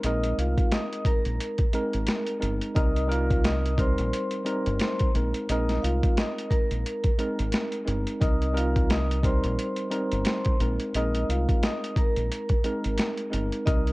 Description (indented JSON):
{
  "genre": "hip hop, boom-bap hip-hop",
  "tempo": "88 BPM",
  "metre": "4/4",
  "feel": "swing 58% on 16ths",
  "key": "unclear",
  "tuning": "A4 = 442 Hz",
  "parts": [
    { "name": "vibraphone with soft mallets", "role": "melody", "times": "0.0-13.9 s", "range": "F4 to Eb6", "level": "-32 LUFS", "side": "equal", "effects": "high-pass filter, low-pass filter, cassette tape" },
    { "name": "mellow tine electric piano", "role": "accompaniment", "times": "0.0-13.9 s", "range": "G3 to Bb4", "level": "-30 LUFS", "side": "right 1 dB", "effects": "medium stereo tremolo, cassette tape, high-pass filter, low-pass filter" },
    { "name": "deep dub fingered electric bass", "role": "bass", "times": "0.0-13.9 s", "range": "G1 to C2", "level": "-27 LUFS", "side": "equal", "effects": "none" },
    { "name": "boom bap sampler-style drum kit", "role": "drums", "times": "0.0-13.9 s", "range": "hi-hat, kick drum, snare drum", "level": "-26 LUFS", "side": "equal", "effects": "overdrive, cassette tape" }
  ],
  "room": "digital ambience",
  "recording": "home recording on cassette",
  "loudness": "-23 LUFS",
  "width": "side -22 dB against mid",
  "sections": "0.0-13.9 A section",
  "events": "none",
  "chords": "0.0 Bb9sus4; 2.8 Cm7; 5.1 Bb9sus4; 8.2 Cm7; 10.6 Bb9sus4"
}